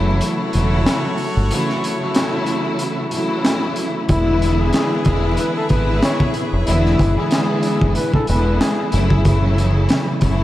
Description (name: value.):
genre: hip hop, boom-bap hip-hop.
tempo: 93 BPM.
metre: 4/4.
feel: swing 54% on 16ths.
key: F# minor.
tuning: A4 = 441 Hz.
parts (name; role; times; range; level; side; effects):
warm studio string section; accompaniment; 0.0-10.4 s; C#3 to E4; -20 LUFS; equal; none.
clear horn section; stabs; 0.0-10.4 s; E4 to C#5; -29 LUFS; left 1 dB; diffuse ambient delay.
deep dub fingered electric bass; bass; 0.0-10.4 s; E1 to G#1; -18 LUFS; equal; none.
crunchy breakbeat drum kit; drums; 0.2-10.4 s; handclaps, hi-hat, kick drum, snare drum; -21 LUFS; equal; none.
trumpet with bucket mute; melody; 4.1-8.9 s; E4 to C#5; -24 LUFS; left 1 dB; diffuse ambient delay.
room: wet cathedral reverb, RT60 5.4 s.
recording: dreamy mix soaked in reverb, vinyl crackle.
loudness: -15 LUFS.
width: side -14 dB against mid.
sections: 0.0-10.4 A section.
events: break 0.0-4.1.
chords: 0.0 F#m7; 4.1 E7; 8.9 F#m7.